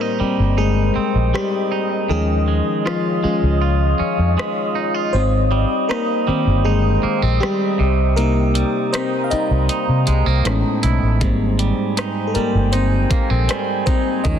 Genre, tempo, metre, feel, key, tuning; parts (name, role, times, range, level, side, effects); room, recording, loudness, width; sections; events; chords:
contemporary R&B; 79 BPM; 4/4; straight; Ab major; A4 = 440 Hz
FM electric piano; accompaniment; 0.0-14.4 s; Eb3 to F5; -21 LUFS; left 4 dB; chorus
deep dark ambient pad; sustained chords; 0.0-14.4 s; C5 to Eb6; -24 LUFS; equal; chorus, built-in reverb
twangy electric guitar; arpeggios; 0.0-14.4 s; Ab2 to F4; -24 LUFS; right 8 dB; ping-pong delay
vintage muted fingered electric bass; bass; 0.2-14.4 s; G1 to C3; -17 LUFS; equal
smooth R&B drum kit; drums; 1.4-14.4 s; hi-hat, kick drum, rim click; -24 LUFS; equal; soft clipping on snare
light reverb; dense, heavily limited modern master; -16 LUFS; side -9 dB against mid
0.0-14.4 A section
break 0.0-11.2; FM electric piano solo 0.0-14.4
0.0 Abmaj7; 2.1 Eb9sus4; 5.1 Abmaj7; 7.8 Cm7; 10.5 Amaj7; 11.2 Abmaj7